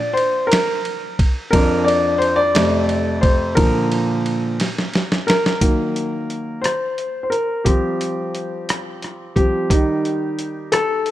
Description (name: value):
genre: six-eight pop ballad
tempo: 59 BPM (dotted quarters)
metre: 6/8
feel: straight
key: unclear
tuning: A4 = 437 Hz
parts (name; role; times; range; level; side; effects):
- warm baby grand piano; accompaniment; 0.0-11.1 s; F2 to D5; -18 LUFS; equal; none
- dusty soul sampler-style drum kit; drums; 0.2-11.1 s; hi-hat, kick drum, ride cymbal, rim click, snare drum; -20 LUFS; equal; none
room: light reverb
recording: none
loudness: -16 LUFS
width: side -14 dB against mid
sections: 0.0-5.6 A section; 5.6-11.1 B section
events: grand piano solo 0.0-5.6, 5.6-11.1; drum fill 4.6-5.6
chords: 0.0 N.C.; 1.5 Bbadd9/F; 2.5 F; 3.6 Bb; 5.6 Ebm; 7.7 Fsus2; 9.7 Eb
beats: 0.51 | 1.53 2.55 | 3.57 4.59 | 5.61 6.64 | 7.66 8.68 | 9.70 10.72